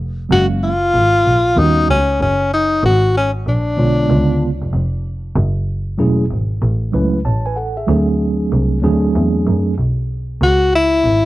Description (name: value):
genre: hip hop, jazz-hop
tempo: 95 BPM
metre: 4/4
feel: swing 65% on 16ths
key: unclear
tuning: A4 = 441 Hz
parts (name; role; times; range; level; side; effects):
- clear double bass; bass; 0.0-11.3 s; E1 to F#2; -17 LUFS; equal; none
- breathy tenor saxophone; melody; 0.3-4.7, 10.4-11.3 s; C#4 to F#4; -14 LUFS; left 2 dB; none
- mellow tine electric piano; accompaniment; 0.3-9.7 s; C#3 to A5; -17 LUFS; right 2 dB; fast stereo tremolo
room: small room reverb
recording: dry, close 1970s-style studio recording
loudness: -13 LUFS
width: side -17 dB against mid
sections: 0.0-11.3 A section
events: none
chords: 0.3 F#maj9; 1.6 D#7alt; 2.8 G#dim; 4.1 C#7b9; 5.4 F#m9; 7.9 D7#11; 10.4 C#m